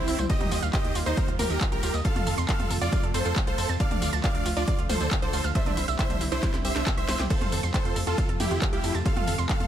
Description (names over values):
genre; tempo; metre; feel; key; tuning
uplifting trance; 137 BPM; 4/4; straight; F major; A4 = 440 Hz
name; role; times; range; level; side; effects
big supersaw lead; melody; 0.0-9.7 s; C4 to F5; -31 LUFS; right 1 dB; sidechain pumping, digital delay
wide unison pluck; second line; 0.0-9.7 s; E4 to F5; -37 LUFS; equal; sidechain pumping, dub echo
lush unison pad; sustained chords; 0.0-9.7 s; C3 to F4; -35 LUFS; equal; chorus, sidechain pumping
analog pluck; arpeggios; 0.0-9.7 s; D4 to C6; -35 LUFS; right 6 dB; chorus, sidechain pumping, dub echo
tight sequencer bass; bass; 0.0-9.7 s; Bb1 to F2; -30 LUFS; equal; sidechain pumping
techno drum kit; drums; 0.1-9.7 s; crash cymbal, handclaps, hi-hat, ride cymbal, snare drum, tambourine, toms; -32 LUFS; equal; none
electronic kick drum; drums; 0.3-9.6 s; none; -27 LUFS; equal; none
room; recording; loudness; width
digital ambience; none; -23 LUFS; side -10 dB against mid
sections
0.0-9.7 A section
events
drum fill 6.4-7.3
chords
0.3 Ebadd9; 2.0 F; 3.8 Dm; 5.6 Cadd9; 7.3 F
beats
| 0.30 0.73 1.17 1.61 | 2.05 2.49 2.92 3.36 | 3.80 4.24 4.68 5.11 | 5.55 5.99 6.43 6.87 | 7.30 7.74 8.18 8.62 | 9.05 9.49